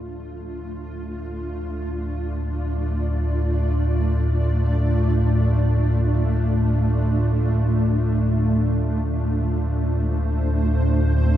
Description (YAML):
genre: dark ambient drone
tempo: free time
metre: none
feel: none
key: D minor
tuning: A4 = 441 Hz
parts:
  - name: granular cloud pad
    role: sustained chords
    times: 0.0-11.4 s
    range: A3 to D5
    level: -26 LUFS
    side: right 1 dB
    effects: built-in reverb
  - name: deep rumbling drone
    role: drone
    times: 0.5-11.4 s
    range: D2 to A2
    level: -20 LUFS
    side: equal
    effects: built-in reverb, wide subtle chorus
room: wet huge ambient reverb, RT60 7.7 s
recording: none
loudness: -19 LUFS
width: side -12 dB against mid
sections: 0.0-11.4 A section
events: fade-in on ambient pad 0.0-11.4; filter sweep on synth drone 0.0-11.4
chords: 0.0 Dm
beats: free time